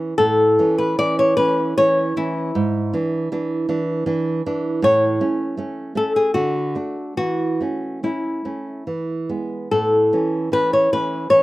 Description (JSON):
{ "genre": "romantic duo for nylon-string guitar and classical guitar", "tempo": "70-80 BPM", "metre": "3/4", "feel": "rubato", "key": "A major", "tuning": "A4 = 437 Hz", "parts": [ { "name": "nylon-string guitar", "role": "accompaniment", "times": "0.0-11.4 s", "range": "G#2 to D4", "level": "-22 LUFS", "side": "right 2 dB", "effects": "none" }, { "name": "flamenco guitar", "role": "melody", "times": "0.2-11.4 s", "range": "E4 to D5", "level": "-18 LUFS", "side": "left 1 dB", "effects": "slapback echo" } ], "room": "light reverb", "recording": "recorded outdoors, with no room sound", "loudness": "-18 LUFS", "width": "side -17 dB against mid", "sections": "0.2-11.4 A section", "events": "none", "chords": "0.2 A; 2.5 E7/G#; 4.8 A; 6.4 D; 7.2 A/E; 8.9 E; 9.7 A" }